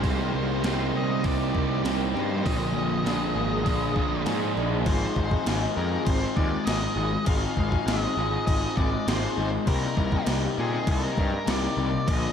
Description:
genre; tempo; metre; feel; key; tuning
rock, shoegaze and dream pop; 100 BPM; 4/4; straight; unclear; A4 = 443 Hz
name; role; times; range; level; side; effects
octave-fuzz lead guitar; melody; 0.0-12.3 s; Ab4 to F5; -33 LUFS; equal; distortion, diffuse ambient delay
ethereal airy pad; sustained chords; 0.0-4.8 s; Ab4 to C6; -38 LUFS; right 1 dB; ensemble chorus, built-in reverb
electric guitar through a small old amp; arpeggios; 0.0-12.3 s; F3 to Ab4; -35 LUFS; right 4 dB; lush chorus, diffuse ambient delay
crunchy overdriven guitar; riff; 0.0-12.3 s; Bb2 to Ab4; -30 LUFS; left 9 dB; analog chorus
overdriven semi-hollow guitar; riff; 0.0-4.9 s; Bb2 to Ab4; -29 LUFS; right 8 dB; reverse reverb
fuzz picked electric bass; bass; 0.0-12.3 s; Ab1 to Bb2; -29 LUFS; equal; overdrive
gated 80s digital drum machine; drums; 0.0-12.2 s; crash cymbal, hi-hat, kick drum, snare drum; -28 LUFS; equal; gated reverb, gated reverb snare
room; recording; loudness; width
moderate lush hall reverb, RT60 2.7 s; dreamy mix soaked in reverb; -23 LUFS; side -8 dB against mid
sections
0.0-4.9 A section; 4.9-12.3 B section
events
none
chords
0.0 Cm7; 2.4 Bb7sus4; 4.9 Ab6; 9.7 Cm7

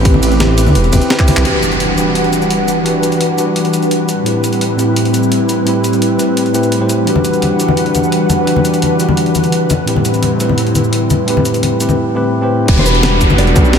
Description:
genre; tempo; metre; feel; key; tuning
liquid drum and bass; 171 BPM; 4/4; straight; E minor; A4 = 440 Hz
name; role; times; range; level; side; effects
mellow electric guitar; melody; 0.0-1.1, 12.8-13.8 s; B4 to D5; -24 LUFS; left 1 dB; vintage 12-bit sampler grit, ping-pong delay
bell-like tine electric piano; accompaniment; 0.0-13.8 s; A2 to C5; -15 LUFS; equal; low-pass filter, ping-pong delay
airy breathy pad; sustained chords; 0.0-13.8 s; A2 to F#5; -16 LUFS; left 1 dB; chorus, sidechain pumping
dark detuned saw bass; bass; 0.0-1.4, 12.7-13.8 s; E1 to D2; -12 LUFS; equal; tube saturation
breakbeat sampler-style drum kit; drums; 0.1-13.8 s; cabasa, crash cymbal, handclaps, hi-hat, ride cymbal, snare drum; -20 LUFS; equal; none
electronic kick drum; drums; 0.1-1.3, 12.7-13.6 s; none; -11 LUFS; right 1 dB; none
congas; percussion; 0.1-1.4, 7.2-13.6 s; none; -19 LUFS; left 3 dB; none
impact and downlifter; sound effects; 1.5-2.9, 12.7-13.8 s; none; -22 LUFS; right 1 dB; none
room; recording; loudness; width
wet huge ambient reverb, RT60 8.0 s; dreamy mix soaked in reverb; -11 LUFS; side -7 dB against mid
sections
0.0-1.5 A section; 1.5-12.7 B section; 12.7-13.8 A section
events
drop 0.0-1.5, 12.7-13.8; drum fill 1.2; band accent 1.4; impact 1.5-2.9; filter sweep on tine electric piano 1.5-12.7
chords
0.0 Am9; 1.5 Em9; 4.1 Am9; 7.1 Em9; 9.7 Am9; 12.7 Em9

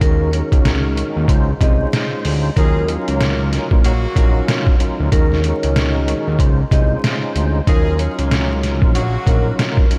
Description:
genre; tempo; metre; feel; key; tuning
hip hop, boom-bap hip-hop; 94 BPM; 4/4; swing 61% on 16ths; Eb dorian; A4 = 438 Hz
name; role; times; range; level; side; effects
vibraphone with medium hard mallets; melody; 0.0-9.4 s; Bb4 to Eb5; -29 LUFS; equal; delay
tonewheel organ; accompaniment; 0.0-10.0 s; Eb3 to C5; -25 LUFS; equal; overdrive, chorus vibrato, slow rotary speaker, cassette tape
fat analog bass; bass; 0.0-9.5 s; Bb1 to Eb2; -21 LUFS; equal; none
trip hop sampler-style drum kit; drums; 0.0-10.0 s; hi-hat, kick drum, snare drum; -19 LUFS; equal; none
clear horn section; stabs; 2.6-9.6 s; Db3 to Bb4; -31 LUFS; equal; delay
room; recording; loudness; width
light reverb; vinyl crackle; -16 LUFS; mono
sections
0.0-10.0 A section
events
none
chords
0.0 Ab9sus4; 1.3 Dbmaj9; 2.6 Ebm9; 5.1 Ab9sus4; 6.4 Dbmaj9; 7.7 Ebm9

